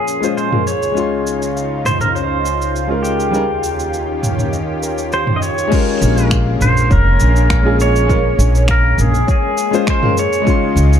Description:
sunset chillout; 101 BPM; 4/4; straight; A4 = 442 Hz
pedal steel guitar; melody; 0.0-11.0 s; G4 to Eb5; -19 LUFS; right 2 dB; digital delay
lush unison pad; sustained chords; 0.0-11.0 s; Db2 to C6; -23 LUFS; left 1 dB; chorus
concert harp; arpeggios; 0.0-11.0 s; F4 to Bb5; -25 LUFS; left 5 dB; tape echo
deep house drum kit; drums; 0.1-11.0 s; cabasa, crash cymbal, finger snaps, toms; -22 LUFS; right 1 dB; overdrive
warm concert grand piano; accompaniment; 0.2-11.0 s; G3 to C6; -20 LUFS; moving between left 8 dB and right 4 dB; auto-pan
electronic kick drum; drums; 5.7-10.6 s; -17 LUFS; equal; overdrive
upright bass; bass; 6.0-11.0 s; F1 to Db2; -13 LUFS; equal
light reverb; dark, warm production; -13 LUFS; side -9 dB against mid
0.0-5.7 A section; 5.7-11.0 B section
filter sweep on harp 0.0-5.7
0.0 Bbm7; 0.7 Dbmaj7; 3.3 Eb7; 5.7 Bbm7; 10.2 Dbmaj7

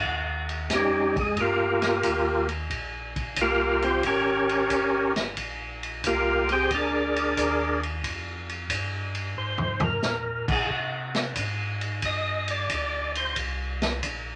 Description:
soul jazz organ trio; 90 BPM; 4/4; swing 69% on 8ths; Bb mixolydian; A4 = 438 Hz
tonewheel organ; bass; 0.0-14.4 s; G1 to C3; -37 LUFS; equal; chorus vibrato, slow rotary speaker
vintage drum kit; drums; 0.0-14.2 s; crash cymbal, hi-hat, kick drum, ride cymbal, snare drum, toms; -32 LUFS; equal
percussive tonewheel organ; melody; 0.7-13.4 s; G3 to Eb5; -26 LUFS; equal; slow rotary speaker, overdrive, chorus vibrato
wet small room reverb, RT60 0.5 s; -26 LUFS; mono
0.0-14.4 A section
tonewheel organ solo 0.0-14.4; drum fill 9.4-10.0
0.0 Eb13; 5.4 Bb13; 10.7 C5

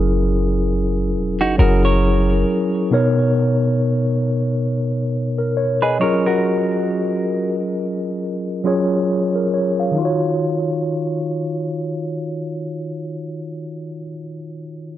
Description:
contemporary R&B; 68 BPM; 4/4; swing 58% on 16ths; Eb minor; A4 = 440 Hz
mellow tine electric piano; accompaniment; 0.0-15.0 s; B2 to F5; -18 LUFS; equal; medium stereo tremolo
clean 808-style bass; bass; 0.0-2.4 s; Fb1 to Gb1; -18 LUFS; equal
clean electric guitar; arpeggios; 1.4-7.5 s; Eb4 to Db5; -22 LUFS; right 3 dB; ping-pong delay
light reverb; worn, warbling old tape, cassette tape, warbly pitch drift, low-pass filter; -17 LUFS; side -12 dB against mid
0.0-10.0 A section; 10.0-13.5 B section
filter sweep 0.0-10.0
0.0 Gb7; 2.9 Bmaj9; 6.0 Gbmaj9; 10.0 Ebm7

